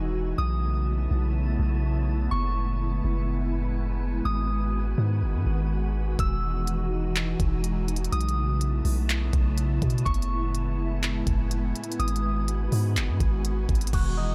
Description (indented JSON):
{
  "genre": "hip hop, atmospheric cloud-rap",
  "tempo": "124 BPM",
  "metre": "4/4",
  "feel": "half-time",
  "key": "unclear",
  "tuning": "A4 = 440 Hz",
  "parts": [
    { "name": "glassy FM pad", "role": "sustained chords", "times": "0.0-14.3 s", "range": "A2 to F#4", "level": "-34 LUFS", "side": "equal", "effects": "ensemble chorus, built-in reverb, sidechain pumping" },
    { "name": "long sustained 808-style bass", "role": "bass", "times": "0.0-14.3 s", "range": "E1 to B2", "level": "-28 LUFS", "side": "equal", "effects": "none" },
    { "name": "wind-like tuned noise texture", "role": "texture", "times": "0.0-14.3 s", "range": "D#4 to A5", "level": "-45 LUFS", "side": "equal", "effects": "built-in reverb" },
    { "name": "soft synth bell", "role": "melody", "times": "0.4-12.4 s", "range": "C#6 to E6", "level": "-38 LUFS", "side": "equal", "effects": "chorus, delay" },
    { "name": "smooth R&B drum kit", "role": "drums", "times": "6.2-14.0 s", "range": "crash cymbal, handclaps, hi-hat, kick drum", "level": "-31 LUFS", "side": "equal", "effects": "none" },
    { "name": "electric guitar with an envelope filter", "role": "arpeggios", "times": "13.9-14.3 s", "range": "D#4 to F#4", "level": "-36 LUFS", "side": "equal", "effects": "phaser" }
  ],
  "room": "digital ambience",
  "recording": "none",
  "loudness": "-26 LUFS",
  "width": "mono",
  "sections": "0.0-13.9 A section",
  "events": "none",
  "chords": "0.4 B9sus4; 2.3 F#m11; 4.3 G#m7; 6.2 Emaj9; 8.1 B9sus4; 10.1 F#m11; 12.0 G#m7",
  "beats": "| 0.38 0.87 1.35 1.83 | 2.32 2.80 3.29 3.77 | 4.25 4.74 5.22 5.71 | 6.19 6.67 7.16 7.64 | 8.13 8.61 9.09 9.58 | 10.06 10.54 11.03 11.51 | 12.00 12.48 12.96 13.45 | 13.93"
}